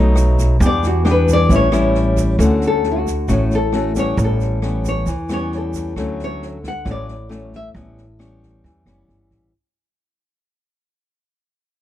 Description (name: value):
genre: bossa nova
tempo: 134 BPM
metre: 4/4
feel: straight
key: D major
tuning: A4 = 440 Hz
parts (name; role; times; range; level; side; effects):
- nylon-string guitar; accompaniment; 0.0-9.5 s; A2 to G4; -20 LUFS; left 2 dB; none
- upright bass; bass; 0.0-9.5 s; F#1 to E2; -18 LUFS; right 1 dB; none
- open jazz drum kit; drums; 0.2-9.4 s; kick drum, rim click, snare drum; -26 LUFS; right 1 dB; none
- tube shaker; percussion; 0.2-6.0 s; none; -36 LUFS; right 16 dB; none
- nylon-string guitar; melody; 0.7-7.7 s; F#4 to F#5; -21 LUFS; left 3 dB; none
room: studio reverb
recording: dry, close 1970s-style studio recording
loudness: -15 LUFS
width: side -12 dB against mid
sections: 0.0-2.4 A section; 2.4-9.5 B section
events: nylon-string guitar solo 0.0-2.4, 2.4-9.5; fade-out 2.4-9.5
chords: 0.0 B7; 0.6 Em7; 1.5 A7; 2.4 Dmaj7; 4.2 A9; 6.0 Dmaj7; 7.8 A9